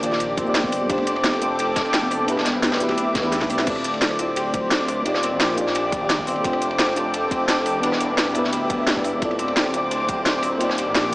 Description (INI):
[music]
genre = liquid drum and bass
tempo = 173 BPM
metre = 4/4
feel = straight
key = D dorian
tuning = A4 = 440 Hz
[part]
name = mellow FM electric piano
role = accompaniment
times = 0.0-11.1 s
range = Eb3 to D5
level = -25 LUFS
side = equal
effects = chorus, tape echo
[part]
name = lush unison pad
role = sustained chords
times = 0.0-11.1 s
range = G4 to D6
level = -26 LUFS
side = equal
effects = chorus, sidechain pumping
[part]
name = Celtic harp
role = arpeggios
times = 0.0-11.1 s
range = A3 to D5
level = -28 LUFS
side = left 1 dB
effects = tape echo
[part]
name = swelling detuned saw bass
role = bass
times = 0.0-11.1 s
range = D1 to E2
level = -29 LUFS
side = equal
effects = tube saturation
[part]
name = crunchy breakbeat drum kit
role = drums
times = 0.0-11.1 s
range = ride cymbal, snare drum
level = -28 LUFS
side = equal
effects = high-pass filter on cymbals, high-pass filter on snare, high-pass filter on room
[part]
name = drum and bass drum kit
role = drums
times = 0.0-11.1 s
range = crash cymbal, hi-hat, rim click, shaker, snare drum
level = -23 LUFS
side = equal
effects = none
[part]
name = electronic kick drum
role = drums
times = 0.4-10.2 s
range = none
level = -30 LUFS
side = equal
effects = none
[part]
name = congas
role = percussion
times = 0.6-3.7 s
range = none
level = -31 LUFS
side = equal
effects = none
[sound]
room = light reverb, studio ambience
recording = small speaker sound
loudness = -19 LUFS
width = side -21 dB against mid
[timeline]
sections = 0.0-3.7 A section; 3.7-11.1 A section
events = drop 0.0-3.7, 3.7-11.1; drum fill 3.3-3.7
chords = 0.0 Ebmaj7; 0.9 F69; 2.3 Em7; 3.7 Dm7; 5.1 Ebmaj7; 6.4 F69; 7.8 Em7; 9.2 Dm7; 10.6 Ebmaj7